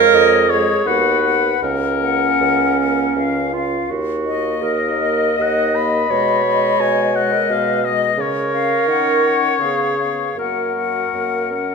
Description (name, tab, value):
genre	classical, slow romantic movement for wind quintet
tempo	76-88 BPM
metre	3/4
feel	rubato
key	F# major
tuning	A4 = 440 Hz
part	bright silver concert flute	melody	0.0-11.7 s	C#5 to F#5	-22 LUFS	left 11 dB	none
part	clear oboe	second line	0.0-11.7 s	A#4 to B5	-20 LUFS	left 7 dB	none
part	mellow French horn	accompaniment	0.0-11.7 s	G#3 to C#4	-28 LUFS	left 1 dB	none
part	mellow clarinet	accompaniment	0.0-11.7 s	C#4 to D#5	-19 LUFS	right 7 dB	none
part	mellow bassoon	bass	0.0-11.7 s	C#2 to D#3	-22 LUFS	right 2 dB	none
room	wet recital hall reverb, RT60 1.5 s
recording	minimal, uncompressed stereo recording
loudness	-15 LUFS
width	side -5 dB against mid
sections	0.0-11.7 A section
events	none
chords	0.0 C#/E#; 0.9 B/D#; 1.6 F#/C#; 3.2 C#; 3.9 D#m; 6.1 G#m/B; 8.2 C#; 8.9 D#m7; 9.6 C#7; 10.4 F#